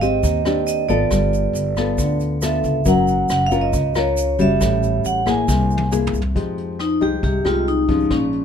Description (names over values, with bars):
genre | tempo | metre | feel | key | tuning
bossa nova | 137 BPM | 4/4 | straight | unclear | A4 = 440 Hz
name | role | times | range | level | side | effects
vibraphone with medium hard mallets | melody | 0.0-8.4 s | Db4 to G#5 | -20 LUFS | right 3 dB | none
nylon-string guitar | accompaniment | 0.0-8.4 s | A2 to A#4 | -21 LUFS | left 4 dB | none
upright bass | bass | 0.0-8.4 s | F#1 to F2 | -22 LUFS | equal | none
vintage brush drum kit | drums | 0.0-8.4 s | hi-hat, kick drum, rim click, snare drum, toms | -27 LUFS | equal | none
tube shaker | percussion | 0.0-6.4 s | none | -34 LUFS | right 6 dB | none
room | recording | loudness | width
light reverb | minimal, uncompressed stereo recording | -16 LUFS | side -8 dB against mid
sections
0.0-6.4 A section; 6.4-8.4 B section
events
drum fill 5.5-6.4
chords
0.0 G#maj7#11; 1.1 G9; 2.9 F#maj7; 4.6 A6; 5.5 C7b13; 6.4 Fm9